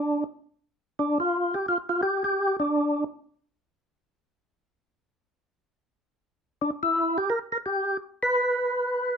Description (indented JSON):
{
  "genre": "jazz",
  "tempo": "171 BPM",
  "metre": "4/4",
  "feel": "swing 62% on 8ths",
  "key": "G mixolydian",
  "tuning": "A4 = 440 Hz",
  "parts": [
    { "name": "percussive tonewheel organ", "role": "solo", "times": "0.0-3.0, 6.6-9.2 s", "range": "D4 to B4", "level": "-24 LUFS", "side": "equal", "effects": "slow rotary speaker, overdrive, chorus vibrato" }
  ],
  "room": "moderate club reverb, RT60 0.6 s",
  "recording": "dark, warm production",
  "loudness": "-24 LUFS",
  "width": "side -6 dB against mid",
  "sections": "0.0-9.2 A section",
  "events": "none",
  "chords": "none"
}